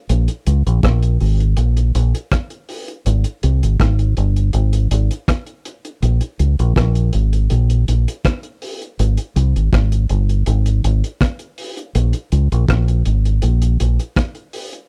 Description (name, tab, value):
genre	roots reggae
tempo	81 BPM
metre	4/4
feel	straight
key	Bb dorian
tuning	A4 = 441 Hz
part	deep dub fingered electric bass	bass	0.1-14.0 s	G1 to Db2	-16 LUFS	equal	none
part	cloth-damped thuddy drum kit	drums	0.1-14.9 s	hi-hat, kick drum, rim click	-23 LUFS	equal	none
room	little or no reverb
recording	dry, close 1970s-style studio recording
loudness	-17 LUFS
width	mono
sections	0.0-14.9 A section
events	none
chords	none